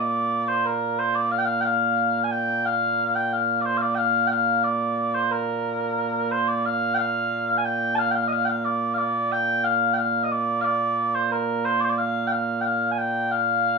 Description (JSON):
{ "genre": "scottish traditional, Scottish pipe music", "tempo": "90 BPM", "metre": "2/4", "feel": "straight", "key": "Bb major", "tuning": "A4 = 440 Hz", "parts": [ { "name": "mellow small bagpipes", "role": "solo", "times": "0.0-13.8 s", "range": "Bb2 to A5", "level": "-21 LUFS", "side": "equal", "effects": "none" } ], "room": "moderate studio reverb, RT60 0.5 s", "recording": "rough home demo mix, small room ambience", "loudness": "-21 LUFS", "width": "side -4 dB against mid", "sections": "0.0-6.6 A section; 6.6-13.8 A section", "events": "none", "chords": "none", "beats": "0.65 | 1.31 1.98 | 2.65 3.31 | 3.98 4.65 | 5.32 5.98 | 6.65 7.32 | 7.98 8.65 | 9.31 9.98 | 10.65 11.31 | 11.98 12.65 | 13.31" }